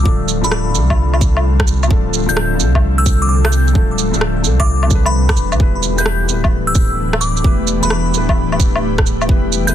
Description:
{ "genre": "future garage", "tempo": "130 BPM", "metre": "4/4", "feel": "swing 67% on 16ths", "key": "unclear", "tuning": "A4 = 443 Hz", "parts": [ { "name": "glassy synth bell", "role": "melody", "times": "0.0-9.7 s", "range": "B5 to G6", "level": "-22 LUFS", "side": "equal", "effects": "chorus, digital delay" }, { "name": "felt-muted upright piano", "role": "accompaniment", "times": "0.0-9.7 s", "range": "F3 to B4", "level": "-24 LUFS", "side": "left 7 dB", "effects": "sidechain pumping, tape echo" }, { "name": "ethereal airy pad", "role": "sustained chords", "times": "0.0-9.7 s", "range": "D3 to B4", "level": "-21 LUFS", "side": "equal", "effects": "ensemble chorus, built-in reverb, sidechain pumping" }, { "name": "warm sub bass", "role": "bass", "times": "0.0-9.7 s", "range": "D1 to D2", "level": "-17 LUFS", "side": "equal", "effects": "sidechain pumping" }, { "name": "electronic kick drum", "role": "drums", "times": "0.1-9.4 s", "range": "none", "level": "-14 LUFS", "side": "equal", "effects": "none" }, { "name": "electronic shaker, rim click and woodblock", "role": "drums", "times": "0.3-9.7 s", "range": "none", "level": "-20 LUFS", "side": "right 1 dB", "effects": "soft clipping on snare" } ], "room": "little or no reverb", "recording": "dense, heavily limited modern master", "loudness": "-12 LUFS", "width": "side -10 dB against mid", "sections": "0.0-9.7 A section", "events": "none", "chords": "0.0 Dm; 5.6 Em" }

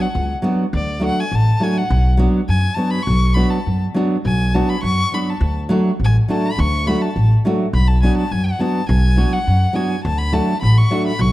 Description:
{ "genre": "balkan folk, Balkan wedding band", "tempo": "103 BPM", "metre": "2/4", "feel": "straight", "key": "B minor", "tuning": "A4 = 442 Hz", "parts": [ { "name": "clear violin", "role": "melody", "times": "0.0-11.3 s", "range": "D5 to C#6", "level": "-24 LUFS", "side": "left 2 dB", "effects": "none" }, { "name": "nylon-string guitar", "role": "accompaniment", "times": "0.0-11.1 s", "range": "F#3 to F#4", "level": "-20 LUFS", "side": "equal", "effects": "none" }, { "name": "upright bass", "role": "bass", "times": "0.1-11.3 s", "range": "A1 to F#2", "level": "-16 LUFS", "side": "equal", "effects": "none" } ], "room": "light reverb", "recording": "dark, warm production", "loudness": "-15 LUFS", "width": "side -16 dB against mid", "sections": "0.0-11.3 A section", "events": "violin solo 0.0-11.3", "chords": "0.0 Bm; 0.7 D; 1.9 Bm; 5.4 D; 7.7 Bm; 10.0 D" }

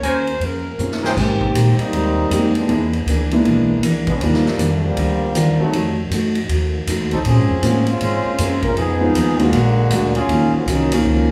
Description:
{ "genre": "jazz, big band swing", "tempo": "158 BPM", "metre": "4/4", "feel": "swing 63% on 8ths", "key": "unclear", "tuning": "A4 = 440 Hz", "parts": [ { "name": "mellow saxophone section", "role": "melody", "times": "0.0-1.0 s", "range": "Bb4 to C5", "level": "-27 LUFS", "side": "equal", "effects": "none" }, { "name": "fingerpicked steel-string acoustic guitar", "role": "accompaniment", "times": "0.0-11.3 s", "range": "Bb2 to C5", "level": "-24 LUFS", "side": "equal", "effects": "none" }, { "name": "mellow trumpet section", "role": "stabs", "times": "0.0-1.1 s", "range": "Ab4 to Ab5", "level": "-26 LUFS", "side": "equal", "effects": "none" }, { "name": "upright bass", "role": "bass", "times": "0.0-11.3 s", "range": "Bb1 to Bb2", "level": "-23 LUFS", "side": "equal", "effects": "none" }, { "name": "swinging big-band drum kit", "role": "drums", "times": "0.0-11.0 s", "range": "crash cymbal, hi-hat, kick drum, ride cymbal, snare drum", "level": "-29 LUFS", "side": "equal", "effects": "none" }, { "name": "warm concert grand piano", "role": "accompaniment", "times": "0.8-11.3 s", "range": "F3 to Ab4", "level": "-21 LUFS", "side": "equal", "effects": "none" }, { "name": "warm trombone section", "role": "second line", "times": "1.0-11.3 s", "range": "C3 to Bb4", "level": "-23 LUFS", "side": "equal", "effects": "none" } ], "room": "wet large studio reverb, RT60 1.2 s", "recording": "heard from further back in the room", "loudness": "-18 LUFS", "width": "mono", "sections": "0.0-1.2 A section; 1.2-11.3 B section", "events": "drum fill 0.8-1.2; trombone section solo 1.2-11.3", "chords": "0.0 Bbm9; 1.2 Abmaj9; 2.7 E7#11; 4.2 Ebmaj9; 5.7 F7b9; 7.3 Bbm9; 8.8 Fm7b5; 9.5 Bb7b13; 10.3 Ebm9" }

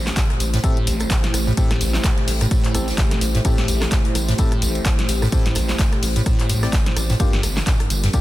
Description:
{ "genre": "acid house", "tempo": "128 BPM", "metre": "4/4", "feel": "swing 57% on 16ths", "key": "A phrygian", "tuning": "A4 = 440 Hz", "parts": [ { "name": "dark analog pad", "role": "sustained chords", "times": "0.0-8.2 s", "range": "G3 to C5", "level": "-27 LUFS", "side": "equal", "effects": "chorus, sidechain pumping" }, { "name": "liquid acid bass", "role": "riff", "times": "0.0-8.2 s", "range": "G1 to C4", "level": "-25 LUFS", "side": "equal", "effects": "tube saturation, lush chorus, cassette tape, tape echo" }, { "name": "round analog bass", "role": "bass", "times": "0.0-8.1 s", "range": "G1 to A2", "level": "-23 LUFS", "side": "equal", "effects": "sidechain pumping" }, { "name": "punchy analog drum machine", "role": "drums", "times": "0.1-8.2 s", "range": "handclaps, hi-hat, rim click, snare drum", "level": "-26 LUFS", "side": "equal", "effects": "none" }, { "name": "soft-mallet drum kit", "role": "drums", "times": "0.1-8.2 s", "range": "hi-hat, snare drum, tambourine", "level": "-34 LUFS", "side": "left 2 dB", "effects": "none" }, { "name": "tambourine", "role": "percussion", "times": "0.1-8.2 s", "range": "none", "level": "-32 LUFS", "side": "right 1 dB", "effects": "none" }, { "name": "electronic kick drum", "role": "drums", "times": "0.2-8.2 s", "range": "none", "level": "-19 LUFS", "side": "equal", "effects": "none" }, { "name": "percussive organ stab", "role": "stabs", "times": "0.6-8.2 s", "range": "Bb3 to D5", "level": "-32 LUFS", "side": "left 4 dB", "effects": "chorus, cassette tape, tape echo" } ], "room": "small room ambience", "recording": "dense, heavily limited modern master", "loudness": "-17 LUFS", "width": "side -16 dB against mid", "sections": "0.0-8.2 A section", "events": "none", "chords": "0.0 Am7; 7.2 Gm7" }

